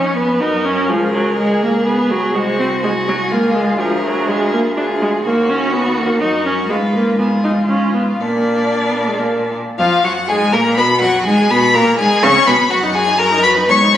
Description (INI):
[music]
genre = quick classical-period movement for string quartet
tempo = 123 BPM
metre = 3/4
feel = rubato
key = Eb minor from 3.8 s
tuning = A4 = 439 Hz
[part]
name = rich violin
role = melody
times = 0.0-14.0 s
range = F4 to Db6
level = -18 LUFS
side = left 4 dB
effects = none
[part]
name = rich violin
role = second line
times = 0.0-14.0 s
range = D4 to Db5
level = -20 LUFS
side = left 1 dB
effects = none
[part]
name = warm viola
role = accompaniment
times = 0.0-14.0 s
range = E#3 to Gb4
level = -17 LUFS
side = right 1 dB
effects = none
[part]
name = rich cello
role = bass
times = 0.0-14.0 s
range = B#1 to Db3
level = -19 LUFS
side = right 1 dB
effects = none
[sound]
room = moderate scoring stage reverb, RT60 1.7 s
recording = recorded on a phone in the room, studio reverb, compression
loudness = -13 LUFS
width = side -11 dB against mid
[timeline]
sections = 0.0-9.8 A section; 9.8-14.0 B section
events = none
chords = 0.4 F#; 0.9 C#5; 2.4 G#7/B#; 3.3 C#; 3.8 Bb7/D; 5.3 Ebm; 6.7 Fdim/Ab; 8.2 Bb; 9.8 Gbmaj9; 10.8 B5; 11.3 Abmadd9; 12.7 Ebm/Gb